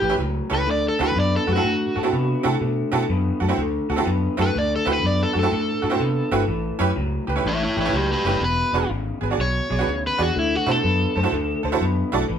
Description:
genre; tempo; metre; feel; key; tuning
blues; 124 BPM; 4/4; swing 66% on 8ths; unclear; A4 = 442 Hz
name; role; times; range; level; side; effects
overdriven semi-hollow guitar; melody; 0.0-11.6 s; E4 to D5; -24 LUFS; equal; none
tack piano; accompaniment; 0.0-12.2 s; C4 to D5; -25 LUFS; right 5 dB; none
electric guitar through a small old amp; riff; 0.0-12.4 s; E2 to B3; -26 LUFS; left 3 dB; none
vintage muted fingered electric bass; bass; 0.0-12.4 s; E1 to C3; -24 LUFS; left 1 dB; none
room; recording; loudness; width
moderate studio reverb, RT60 0.7 s; band playing live in one room; -19 LUFS; side -8 dB against mid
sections
0.0-12.4 A section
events
overdriven electric guitar solo 0.0-12.4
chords
0.0 A7; 0.7 D7; 6.5 A7; 8.4 E7; 10.4 D7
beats
0.19 | 0.68 1.16 1.64 2.13 | 2.61 3.09 3.58 4.06 | 4.54 5.03 5.51 6.00 | 6.48 6.96 7.45 7.93 | 8.42 8.90 9.38 9.87 | 10.35 10.84 11.32 11.81 | 12.29

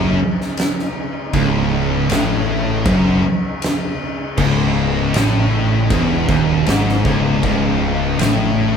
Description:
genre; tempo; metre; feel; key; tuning
stoner and doom metal; 79 BPM; 4/4; straight; C# minor; A4 = 440 Hz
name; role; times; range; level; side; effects
tonewheel organ; sustained chords; 0.0-8.8 s; C#3 to D#4; -30 LUFS; right 1 dB; none
thick fuzz guitar; riff; 0.0-8.8 s; C#2 to A2; -20 LUFS; left 6 dB; distortion
thick fuzz guitar; riff; 0.0-8.8 s; C#2 to A2; -21 LUFS; right 6 dB; distortion
tight distorted guitar; riff; 0.0-8.8 s; C#2 to A2; -22 LUFS; equal; distortion
fuzz fingered electric bass; bass; 0.0-8.8 s; C#1 to A1; -22 LUFS; equal; overdrive
oversized low-tuned drum kit; drums; 0.4-8.4 s; crash cymbal, kick drum, ride cymbal, snare drum; -21 LUFS; equal; none
room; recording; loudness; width
moderate large studio reverb, RT60 1.3 s; band playing live in one room; -15 LUFS; side -7 dB against mid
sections
0.0-8.8 A section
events
none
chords
0.0 C#m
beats
0.58 | 1.34 2.10 2.87 3.63 | 4.39 5.15 5.91 6.68 | 7.44 8.20

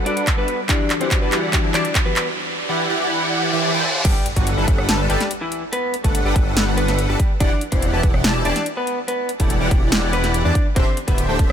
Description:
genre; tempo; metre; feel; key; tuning
future bass; 143 BPM; 4/4; half-time; G major; A4 = 440 Hz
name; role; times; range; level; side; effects
glassy digital keys; accompaniment; 0.0-2.1 s; E3 to E5; -29 LUFS; left 5 dB; chorus, sidechain pumping, ping-pong delay
rich studio string section; sustained chords; 0.0-2.4 s; D3 to B4; -35 LUFS; right 2 dB; none
big bright polysynth; riff; 0.0-11.5 s; D3 to A5; -23 LUFS; equal; ensemble chorus, sidechain pumping
riser, reverse cymbal and impact; sound effects; 0.5-5.7 s; none; -27 LUFS; right 1 dB; none
electric guitar through a small old amp; melody; 0.1-11.4 s; E3 to D5; -25 LUFS; left 1 dB; sidechain pumping, ping-pong delay
big-room dance drum kit; drums; 0.1-11.5 s; crash cymbal, handclaps, hi-hat, rim click, snare drum; -24 LUFS; equal; high-pass filter on hats, high-pass filter on snare, high-pass filter on cymbals
electronic kick drum; drums; 0.3-11.5 s; none; -18 LUFS; equal; none
wide detuned saw bass; bass; 4.0-11.5 s; D1 to E2; -21 LUFS; equal; chorus, sidechain pumping
room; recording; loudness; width
light reverb; none; -16 LUFS; side -9 dB against mid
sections
0.0-4.0 A section; 4.0-11.5 B section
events
build-up 0.0-4.0; drum fill 0.0-2.4; riser 0.5-4.0; reverse cymbal 3.2-4.0; drop 4.0-11.5; impact 4.0-5.7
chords
0.0 Gmaj7; 0.7 Em9; 3.8 N.C.; 4.0 Gmaj7; 7.4 Em9; 10.6 D7sus4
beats
0.27 | 0.69 1.11 1.53 1.95 | 2.37 2.79 3.21 3.63 | 4.05 4.47 4.89 5.31 | 5.73 6.15 6.57 6.99 | 7.41 7.83 8.24 8.66 | 9.08 9.50 9.92 10.34 | 10.76 11.18

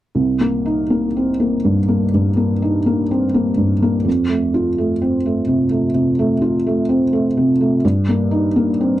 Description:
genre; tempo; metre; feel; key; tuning
neoclassical minimalist piano; 63 BPM; 4/4; rubato; C dorian; A4 = 440 Hz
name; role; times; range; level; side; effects
felt-muted upright piano; solo; 0.1-9.0 s; C2 to F4; -15 LUFS; equal; none
room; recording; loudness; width
light reverb; dry, close 1970s-style studio recording; -15 LUFS; side -14 dB against mid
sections
0.2-9.0 A section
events
none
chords
0.2 Cm7; 4.1 F; 7.8 Eb6/G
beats
| 0.15 1.16 2.14 3.11 | 4.06 5.01 5.96 6.89 | 7.83 8.79

